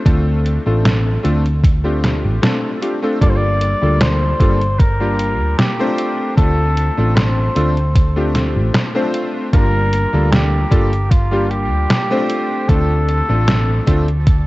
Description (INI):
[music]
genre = vaporwave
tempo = 76 BPM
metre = 4/4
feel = swing 53% on 16ths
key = G minor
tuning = A4 = 440 Hz
[part]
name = clear electric grand piano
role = accompaniment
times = 0.1-14.1 s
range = G3 to C5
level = -20 LUFS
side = left 1 dB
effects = analog chorus, vintage 12-bit sampler grit
[part]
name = hollow-body short-scale fingered electric bass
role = bass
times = 0.1-14.5 s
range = G1 to D2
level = -17 LUFS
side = equal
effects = none
[part]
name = detuned 8-bit digital drum machine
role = drums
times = 0.1-14.4 s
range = hi-hat, snare drum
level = -19 LUFS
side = equal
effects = overdrive, gated reverb
[part]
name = electronic kick drum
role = drums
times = 0.1-14.4 s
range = none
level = -13 LUFS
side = equal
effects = overdrive
[part]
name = warm flugelhorn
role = melody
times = 3.2-14.3 s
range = F4 to D5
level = -22 LUFS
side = equal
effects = vintage 12-bit sampler grit, tape echo
[sound]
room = light reverb, digital ambience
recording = cassette tape, nothing above 7.9 kHz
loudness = -13 LUFS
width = side -19 dB against mid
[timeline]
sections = 0.0-14.5 A section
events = none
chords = 0.0 Dm7; 3.2 Gm9; 6.0 Dm7; 9.5 Gm9; 12.3 Dm7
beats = | 0.06 0.85 1.64 2.43 | 3.22 4.01 4.80 5.58 | 6.38 7.16 7.95 8.74 | 9.53 10.32 11.11 11.90 | 12.69 13.48 14.27